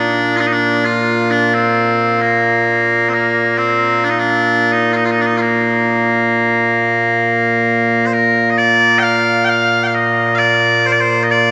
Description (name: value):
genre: scottish traditional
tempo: 66 BPM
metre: 3/4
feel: straight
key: Bb major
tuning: A4 = 438 Hz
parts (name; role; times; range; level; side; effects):
- loud bright bagpipes; solo; 0.0-11.5 s; Bb2 to G5; -14 LUFS; equal; none
room: wet cathedral reverb, RT60 5.4 s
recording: recorded in a church or concert hall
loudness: -14 LUFS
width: mono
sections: 0.0-8.6 A section; 8.6-11.5 B section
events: none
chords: none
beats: | 0.40 1.31 2.22 | 3.12 4.03 4.94 | 5.85 6.76 7.67 | 8.58 9.49 10.40 | 11.31